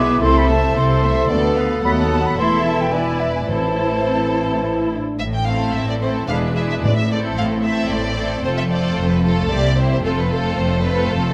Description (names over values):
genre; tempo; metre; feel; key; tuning
quick classical-period movement for symphony orchestra; 111 BPM; 3/4; rubato; A minor; A4 = 441 Hz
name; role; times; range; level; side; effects
warm studio violin section; melody; 0.0-11.3 s; A4 to G5; -28 LUFS; equal; none
clear clarinet; second line; 0.0-4.9 s; G#4 to D5; -27 LUFS; equal; none
silver concert flute; second line; 0.0-4.9 s; E5 to D6; -24 LUFS; equal; none
warm symphonic violin section; second line; 0.0-11.3 s; E4 to C5; -30 LUFS; equal; none
mellow bassoon; accompaniment; 0.0-4.9 s; E3 to E4; -27 LUFS; equal; none
warm studio viola section; accompaniment; 0.0-11.3 s; G#3 to E4; -27 LUFS; equal; none
rich studio double bass section; bass; 0.0-11.3 s; E1 to D#2; -25 LUFS; equal; none
warm studio cello section; bass; 0.0-11.3 s; C2 to C3; -26 LUFS; equal; none
mellow French horn section; sustained chords; 0.2-5.2 s; A3 to E4; -27 LUFS; equal; none
timpani; percussion; 3.5-4.3, 6.8-7.6 s; A2; -27 LUFS; equal; none
room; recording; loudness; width
moderate recital hall reverb, RT60 1.6 s; none; -18 LUFS; mono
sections
0.0-5.2 A section; 5.2-11.3 B section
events
none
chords
0.2 Am/C; 1.3 Bm7b5/D; 1.8 B7/D#; 2.4 Am/E; 2.9 E7; 3.5 Am; 6.3 E7; 6.8 Am; 8.4 F; 9.5 C7; 10.0 F